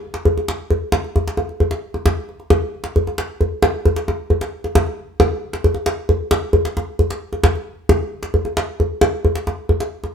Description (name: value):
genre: west african traditional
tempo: 89 BPM (dotted quarters)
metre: 12/8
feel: straight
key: none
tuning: none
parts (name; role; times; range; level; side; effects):
- djembe; percussion; 0.1-10.1 s; none; -17 LUFS; equal; none
room: moderate studio reverb, RT60 0.8 s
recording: band playing live in one room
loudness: -17 LUFS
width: side -7 dB against mid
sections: 0.0-10.1 A section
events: none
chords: none